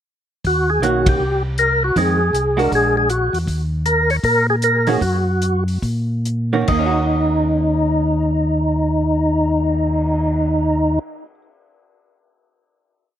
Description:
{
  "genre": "soul jazz organ trio",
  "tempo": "135-159 BPM",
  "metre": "4/4",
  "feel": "swing 64% on 8ths",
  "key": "Eb minor",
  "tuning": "A4 = 440 Hz",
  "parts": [
    { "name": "mellow tonewheel organ", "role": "bass", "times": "0.4-11.0 s", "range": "Bb1 to Bb2", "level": "-20 LUFS", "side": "equal", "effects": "slow rotary speaker" },
    { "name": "warm soul drum kit", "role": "drums", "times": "0.4-10.1 s", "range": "crash cymbal, cymbal swell, hi-hat, kick drum, ride cymbal", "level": "-24 LUFS", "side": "equal", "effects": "none" },
    { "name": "percussive tonewheel organ", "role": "melody", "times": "0.5-11.0 s", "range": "Eb4 to Db5", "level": "-18 LUFS", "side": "left 1 dB", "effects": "overdrive, chorus vibrato, slow rotary speaker, slapback echo" },
    { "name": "vintage hollow-body jazz guitar", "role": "accompaniment", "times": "0.8-11.4 s", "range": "Eb3 to Gb4", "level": "-22 LUFS", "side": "right 6 dB", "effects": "slapback echo" }
  ],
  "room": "little or no reverb",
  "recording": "recorded outdoors, with no room sound",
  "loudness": "-15 LUFS",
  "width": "side -10 dB against mid",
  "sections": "0.4-6.7 A section; 6.7-10.2 final chord",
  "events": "band accent 1.0; slowing down 3.5-6.7",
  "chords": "0.4 Ebm7; 1.2 Gmadd11/C; 2.0 Fm7; 2.7 Bbaug7; 3.5 Ebm; 6.7 Ebm7",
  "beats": "| 0.44 0.82 1.20 1.58 | 1.96 2.33 2.71 3.09 | 3.47 3.85 4.23 4.62 | 5.01 5.42 5.83 6.25 | 6.69 7.13 7.57 8.02 | 8.46 8.90 9.35 9.79"
}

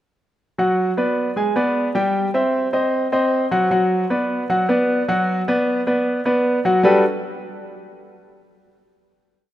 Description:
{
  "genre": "jazz",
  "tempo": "153 BPM",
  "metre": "4/4",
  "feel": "straight",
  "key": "G major",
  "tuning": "A4 = 440 Hz",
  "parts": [
    { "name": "clear baby grand piano", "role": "solo", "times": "0.6-7.0 s", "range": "F#3 to Ab5", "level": "-17 LUFS", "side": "equal", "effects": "none" }
  ],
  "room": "moderate lush hall reverb, RT60 2.6 s",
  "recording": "rough home demo mix",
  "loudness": "-17 LUFS",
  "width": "side -13 dB against mid",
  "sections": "0.6-6.8 A section; 6.8-8.4 final chord",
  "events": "none",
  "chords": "0.6 Bm/F#; 1.4 G; 2.1 C/G; 2.9 Cdim; 3.7 Bm/F#; 6.8 Gmaj9",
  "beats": "| 0.58 0.97 1.36 1.75 | 2.14 2.53 2.93 3.32 | 3.71 4.10 4.49 4.89 | 5.28 5.67 6.06 6.45 | 6.85"
}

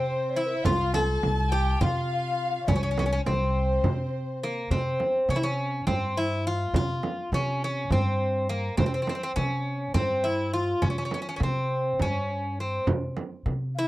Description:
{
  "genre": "Turkish makam ensemble",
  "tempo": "206 BPM (eighths)",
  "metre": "7/8",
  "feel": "straight",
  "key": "C makam hicaz",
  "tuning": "A4 = 441 Hz",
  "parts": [
    { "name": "Greek bouzouki", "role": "melody", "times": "0.0-13.9 s", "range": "Bb3 to A4-40c", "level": "-28 LUFS", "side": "equal", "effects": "none" },
    { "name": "breathy mellow ney", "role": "second line", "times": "0.0-4.4, 13.7-13.9 s", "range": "Bb4 to A5-45c", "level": "-32 LUFS", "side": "left 5 dB", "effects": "none" },
    { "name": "rich studio violin section", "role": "second line", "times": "0.0-4.4 s", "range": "C5 to A5-40c", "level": "-35 LUFS", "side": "right 1 dB", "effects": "none" },
    { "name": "upright bass", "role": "bass", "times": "0.0-13.9 s", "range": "C2 to C3", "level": "-29 LUFS", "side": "equal", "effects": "none" },
    { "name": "frame drum", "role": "percussion", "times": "0.6-13.6 s", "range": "none", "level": "-29 LUFS", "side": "right 2 dB", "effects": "none" }
  ],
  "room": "little or no reverb",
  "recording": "dry, close 1970s-style studio recording",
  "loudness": "-24 LUFS",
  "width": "side -17 dB against mid",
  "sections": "0.0-4.7 A section; 4.7-13.9 B section",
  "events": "none",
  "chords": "none",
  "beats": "0.07 0.36 | 0.65 0.94 1.23 1.52 1.81 2.10 2.39 | 2.68 2.97 3.26 3.55 3.84 4.13 4.42 | 4.71 5.00 5.29 5.58 5.87 6.16 6.46 | 6.75 7.04 7.33 7.62 7.91 8.20 8.49 | 8.79 9.08 9.37 9.66 9.95 10.24 10.54 | 10.83 11.12 11.41 11.70 12.00 12.29 12.58 | 12.87 13.16 13.46 13.75"
}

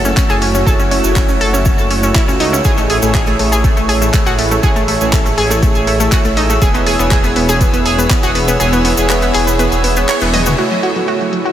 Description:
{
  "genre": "progressive house",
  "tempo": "121 BPM",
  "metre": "4/4",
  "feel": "straight",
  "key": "F# minor",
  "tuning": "A4 = 440 Hz",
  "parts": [
    { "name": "analog pluck", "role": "arpeggios", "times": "0.0-11.5 s", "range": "F#3 to D#5", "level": "-17 LUFS", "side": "equal", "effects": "chorus, sidechain pumping, diffuse ambient delay" },
    { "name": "soft supersaw", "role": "stabs", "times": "0.0-11.5 s", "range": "A3 to C#5", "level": "-17 LUFS", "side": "right 2 dB", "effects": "sidechain pumping, low-pass filter, diffuse ambient delay" },
    { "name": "dark detuned saw bass", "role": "bass", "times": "0.0-10.5 s", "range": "E1 to C#2", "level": "-18 LUFS", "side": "equal", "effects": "tube saturation, sidechain pumping" },
    { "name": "drifting glass-harmonics texture", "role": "texture", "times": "0.0-11.5 s", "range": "E6", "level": "-26 LUFS", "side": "right 2 dB", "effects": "chorus, built-in reverb, sidechain pumping" },
    { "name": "cabasa", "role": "percussion", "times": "0.1-10.6 s", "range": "none", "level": "-27 LUFS", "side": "right 2 dB", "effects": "none" },
    { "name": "deep house drum kit", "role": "drums", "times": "0.2-11.5 s", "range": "crash cymbal, handclaps, hi-hat, toms", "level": "-21 LUFS", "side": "left 1 dB", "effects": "overdrive, low-pass filter on hats, low-pass filter on snare, low-pass filter on toms, low-pass filter on cymbals, low-pass filter on room" },
    { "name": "electronic kick drum", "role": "drums", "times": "0.2-8.2 s", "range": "none", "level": "-14 LUFS", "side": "equal", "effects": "overdrive" },
    { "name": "shimmering ambient pad", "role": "sustained chords", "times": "10.9-11.5 s", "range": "C#3 to F#4", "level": "-35 LUFS", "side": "left 1 dB", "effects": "none" }
  ],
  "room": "moderate huge ambient reverb, RT60 6.0 s",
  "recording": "dreamy mix soaked in reverb",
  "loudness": "-11 LUFS",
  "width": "side -11 dB against mid",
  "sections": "0.0-10.6 A section",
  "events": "filter sweep on supersaw synth 0.0-10.6; kick drops out 8.6-10.6; band accent 10.1; drum fill 10.3",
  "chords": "0.0 F#m7; 2.6 Amaj7; 6.6 E6; 10.6 F#m7",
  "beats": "0.17 | 0.67 1.16 1.66 2.15 | 2.65 3.15 3.64 4.14 | 4.63 5.13 5.62 6.12 | 6.62 7.11 7.61 8.11 | 8.60 9.10 9.59 10.09 | 10.58 11.08"
}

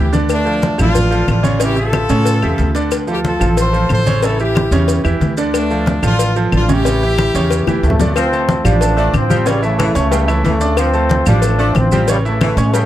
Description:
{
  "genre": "latin, salsa",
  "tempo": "183 BPM",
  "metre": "4/4",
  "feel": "straight",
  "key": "D minor",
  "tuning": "A4 = 440 Hz",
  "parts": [
    { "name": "brilliant horn section", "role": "melody", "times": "0.0-7.8 s", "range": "A3 to C5", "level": "-19 LUFS", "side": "left 1 dB", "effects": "tape echo" },
    { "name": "bright baby grand piano", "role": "accompaniment", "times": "0.0-12.9 s", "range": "C#3 to D6", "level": "-20 LUFS", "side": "right 3 dB", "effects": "none" },
    { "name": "upright bass", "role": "bass", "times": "0.0-12.9 s", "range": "A1 to A2", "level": "-16 LUFS", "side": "equal", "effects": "none" },
    { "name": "congas", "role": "percussion", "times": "0.1-12.9 s", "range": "none", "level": "-19 LUFS", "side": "left 1 dB", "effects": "none" },
    { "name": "cowbell and bongos", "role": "percussion", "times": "0.1-12.9 s", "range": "none", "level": "-24 LUFS", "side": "left 8 dB", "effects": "none" },
    { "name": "maracas", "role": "percussion", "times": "0.1-12.9 s", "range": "none", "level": "-31 LUFS", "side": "right 7 dB", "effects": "none" },
    { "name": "claves", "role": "percussion", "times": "0.3-12.6 s", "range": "none", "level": "-26 LUFS", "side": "left 9 dB", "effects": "none" },
    { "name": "clear trombone section", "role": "melody", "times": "7.8-12.9 s", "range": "C#3 to D4", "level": "-18 LUFS", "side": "equal", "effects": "none" },
    { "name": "mellow saxophone section", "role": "second line", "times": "8.2-12.9 s", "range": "C#3 to A3", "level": "-22 LUFS", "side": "equal", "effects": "none" }
  ],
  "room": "light reverb",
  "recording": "dry, close 1970s-style studio recording",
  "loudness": "-12 LUFS",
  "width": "side -13 dB against mid",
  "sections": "0.0-8.2 A section; 8.2-12.9 B section",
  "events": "drum fill 7.7-8.2",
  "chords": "0.3 Dm; 1.6 A7; 2.9 Dm7; 4.2 A7; 5.5 Dm; 6.8 A7; 8.2 Dm7; 9.5 A7; 10.8 Dm7; 12.1 A7",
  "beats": "| 0.29 0.62 0.95 1.28 | 1.61 1.93 2.26 2.59 | 2.92 3.25 3.57 3.90 | 4.23 4.56 4.88 5.21 | 5.54 5.87 6.19 6.52 | 6.85 7.18 7.50 7.83 | 8.16 8.48 8.81 9.14 | 9.47 9.79 10.12 10.45 | 10.77 11.10 11.43 11.76 | 12.08 12.41 12.74"
}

